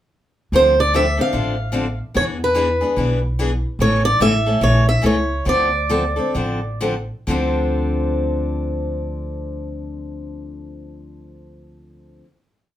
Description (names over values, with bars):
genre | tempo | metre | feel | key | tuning
acoustic string swing (jazz manouche) | 125-147 BPM | 4/4 | swing 62% on 8ths | D minor | A4 = 440 Hz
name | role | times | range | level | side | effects
picked steel-string acoustic guitar | accompaniment | 0.5-12.3 s | C#3 to A4 | -22 LUFS | left 2 dB | none
upright bass | bass | 0.5-12.2 s | A1 to E2 | -22 LUFS | equal | none
picked swing-style acoustic guitar | melody | 0.6-6.8 s | B4 to F5 | -18 LUFS | right 1 dB | none
room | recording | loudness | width
moderate studio reverb, RT60 0.5 s | band playing live in one room | -16 LUFS | side -12 dB against mid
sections
0.5-7.3 A section; 7.3-11.1 final chord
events
slowing down 3.8-7.3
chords
0.5 Dm7; 2.2 E7; 3.8 A; 5.5 Dm7